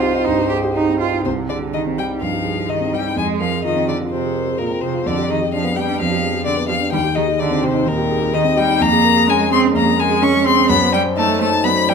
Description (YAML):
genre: quick classical-period movement for piano trio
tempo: 127 BPM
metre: 4/4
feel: rubato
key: C minor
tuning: A4 = 440 Hz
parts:
  - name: rich violin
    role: melody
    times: 0.0-11.9 s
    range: Bb4 to Db6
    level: -19 LUFS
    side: left 7 dB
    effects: none
  - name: clear cello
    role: second line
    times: 0.0-11.9 s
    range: Bb2 to G4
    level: -21 LUFS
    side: right 8 dB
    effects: none
  - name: warm grand piano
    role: accompaniment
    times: 0.0-11.9 s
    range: C2 to D5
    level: -19 LUFS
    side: equal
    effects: none
room: moderate large studio reverb, RT60 1.2 s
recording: minimal, uncompressed stereo recording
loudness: -15 LUFS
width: side -6 dB against mid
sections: 0.0-1.3 A section; 1.3-11.9 A section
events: none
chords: 0.0 Cm; 3.2 Fm; 5.1 G7/F; 6.9 Cm/Eb; 8.8 Db/F; 10.7 F#dim7